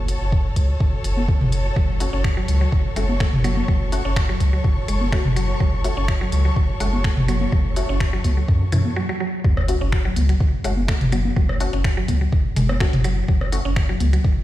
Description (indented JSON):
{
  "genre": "minimal techno",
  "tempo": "125 BPM",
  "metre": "4/4",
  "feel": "swing 53% on 16ths",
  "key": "F# minor",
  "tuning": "A4 = 442 Hz",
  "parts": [
    { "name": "saturated sub bass", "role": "bass", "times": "0.0-14.4 s", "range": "F#1 to F#2", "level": "-22 LUFS", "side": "equal", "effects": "sidechain pumping" },
    { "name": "warm symphonic string section", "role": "texture", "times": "0.0-9.0 s", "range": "F#4 to C#6", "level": "-30 LUFS", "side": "left 1 dB", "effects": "sidechain pumping" },
    { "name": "minimal click drum kit", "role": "drums", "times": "0.1-14.2 s", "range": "finger snaps, hi-hat", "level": "-31 LUFS", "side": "equal", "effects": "none" },
    { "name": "electronic kick drum", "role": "drums", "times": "0.3-14.3 s", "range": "none", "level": "-20 LUFS", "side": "equal", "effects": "none" },
    { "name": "booming analog drum machine", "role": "percussion", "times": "1.2-14.1 s", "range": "congas, rim click, toms", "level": "-24 LUFS", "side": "left 1 dB", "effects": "ping-pong delay" },
    { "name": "mallet-like synth pluck", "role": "riff", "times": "1.8-14.2 s", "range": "E3 to C#4", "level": "-28 LUFS", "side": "equal", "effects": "chorus, sidechain pumping, digital delay" },
    { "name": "filtered dub chord stab", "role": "stabs", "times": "2.0-13.6 s", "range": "A3 to F#4", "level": "-30 LUFS", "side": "left 4 dB", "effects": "ensemble chorus, ping-pong delay" },
    { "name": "sub drop", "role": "sound effects", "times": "9.5-11.4 s", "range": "none", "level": "-27 LUFS", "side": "equal", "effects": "none" }
  ],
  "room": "little or no reverb",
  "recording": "played on a big sound system in a bare room, stone room reverb",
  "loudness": "-18 LUFS",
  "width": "side -14 dB against mid",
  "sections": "0.0-9.4 A section; 9.4-14.4 B section",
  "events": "fade-in on string section 0.0-9.4; break 9.0-9.4; drop 9.4-14.4; impact 9.4-11.4",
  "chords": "0.0 F#m; 9.4 F#5",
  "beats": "0.32 0.80 1.28 | 1.76 2.24 2.72 3.20 | 3.68 4.16 4.64 5.12 | 5.60 6.08 6.56 7.04 | 7.52 8.00 8.48 8.96 | 9.44 9.92 10.40 10.88 | 11.36 11.84 12.32 12.80 | 13.28 13.76 14.24"
}